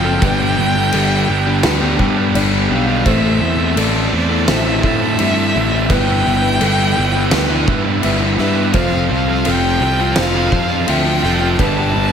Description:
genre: post-rock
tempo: 84 BPM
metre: 4/4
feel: straight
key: A minor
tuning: A4 = 440 Hz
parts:
  - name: rich violin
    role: melody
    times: 0.0-12.1 s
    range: D5 to A5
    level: -21 LUFS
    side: equal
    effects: slapback echo
  - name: clear studio string section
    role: sustained chords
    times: 0.0-12.1 s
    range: F4 to C6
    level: -32 LUFS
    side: left 1 dB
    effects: none
  - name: felt-muted upright piano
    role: arpeggios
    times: 0.0-12.1 s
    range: A4 to E6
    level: -29 LUFS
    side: right 4 dB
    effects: slapback echo
  - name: twelve-string electric guitar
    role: arpeggios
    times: 0.0-12.1 s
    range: F3 to B4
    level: -26 LUFS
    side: left 2 dB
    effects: none
  - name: fuzz guitar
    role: riff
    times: 0.0-12.1 s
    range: F3 to B4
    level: -20 LUFS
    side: left 12 dB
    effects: distortion
  - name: overdriven electric guitar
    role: riff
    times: 0.0-12.1 s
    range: F3 to B4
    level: -20 LUFS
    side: right 11 dB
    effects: none
  - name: fuzz picked electric bass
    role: bass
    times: 0.0-12.1 s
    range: F1 to A2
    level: -19 LUFS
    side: equal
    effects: overdrive
  - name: oversized low-tuned drum kit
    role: drums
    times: 0.2-11.8 s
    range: crash cymbal, kick drum, snare drum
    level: -20 LUFS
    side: equal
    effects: none
room: light reverb, studio ambience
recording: none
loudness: -13 LUFS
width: side -7 dB against mid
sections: 0.0-12.1 A section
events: none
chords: 0.2 Gadd9; 3.1 Am; 5.9 Em/G; 8.7 F; 11.6 Gadd9

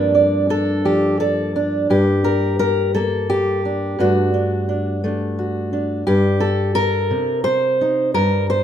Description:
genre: folk, solo fingerstyle acoustic guitar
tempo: 58 BPM (dotted quarters)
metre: 6/8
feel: straight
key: G minor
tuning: A4 = 439 Hz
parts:
  - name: fingerpicked steel-string acoustic guitar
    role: solo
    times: 0.0-8.6 s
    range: G2 to D5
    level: -16 LUFS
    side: equal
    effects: none
room: moderate large studio reverb, RT60 0.8 s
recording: minimal, uncompressed stereo recording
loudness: -16 LUFS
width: side -9 dB against mid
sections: 0.0-1.9 A section; 1.9-8.6 B section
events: none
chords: 0.0 Bb/G; 1.9 Gmadd9; 4.0 D/G; 6.1 Cm/G

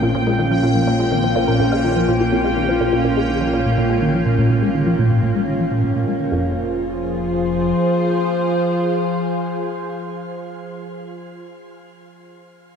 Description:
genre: ambient, sequencer-driven space music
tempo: 124 BPM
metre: 4/4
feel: straight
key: F minor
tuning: A4 = 438 Hz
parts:
  - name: evolving wavetable pad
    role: sustained chords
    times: 0.0-10.9 s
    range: F3 to C5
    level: -20 LUFS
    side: equal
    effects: chorus, built-in reverb, shimmer reverb
  - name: soft round pluck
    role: arpeggios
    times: 0.0-2.4 s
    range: F3 to F5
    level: -25 LUFS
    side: left 1 dB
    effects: chorus, auto-pan, shimmer reverb, ping-pong delay
  - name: resonant blip pluck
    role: riff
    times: 0.0-6.5 s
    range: F2 to Ab3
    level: -20 LUFS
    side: equal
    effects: phaser, shimmer reverb, ping-pong delay
  - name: fat analog bass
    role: bass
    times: 0.0-7.7 s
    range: F1 to Bb1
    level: -27 LUFS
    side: equal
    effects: none
  - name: bubbling stepped-filter texture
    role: texture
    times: 0.0-6.3 s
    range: G5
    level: -27 LUFS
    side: left 1 dB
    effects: chorus, built-in reverb, shimmer reverb
room: wet lush hall reverb, RT60 2.7 s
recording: cassette tape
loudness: -16 LUFS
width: side -7 dB against mid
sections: 0.0-6.3 A section; 6.3-10.2 B section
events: fade-out on analog synth bass 0.0-6.3; filter sweep on synth arpeggio sound 0.0-6.3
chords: 0.0 Bbm; 6.3 Fm

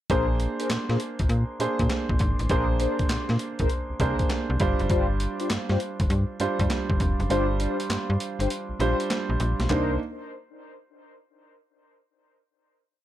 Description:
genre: R&B, new jack swing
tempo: 100 BPM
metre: 4/4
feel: swing 66% on 16ths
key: unclear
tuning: A4 = 439 Hz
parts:
  - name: warm concert grand piano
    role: accompaniment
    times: 0.1-10.0 s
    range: G3 to C5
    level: -28 LUFS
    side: right 3 dB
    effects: none
  - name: mellow synth brass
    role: stabs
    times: 0.1-9.9 s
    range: D4 to C5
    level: -31 LUFS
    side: left 3 dB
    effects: chorus, tape echo
  - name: slap-like FM bass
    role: bass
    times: 0.1-10.0 s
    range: F1 to Bb2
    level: -26 LUFS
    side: equal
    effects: none
  - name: breakbeat sampler-style drum kit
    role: drums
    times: 0.1-9.9 s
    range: handclaps, hi-hat, kick drum, snare drum, toms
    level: -28 LUFS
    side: equal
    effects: none
room: little or no reverb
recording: none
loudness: -23 LUFS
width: side -13 dB against mid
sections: 0.1-9.7 verse; 9.7-12.1 final chord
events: kick muted 7.3-9.7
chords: 0.1 Bb9; 4.6 G7sus4; 9.7 Cm9

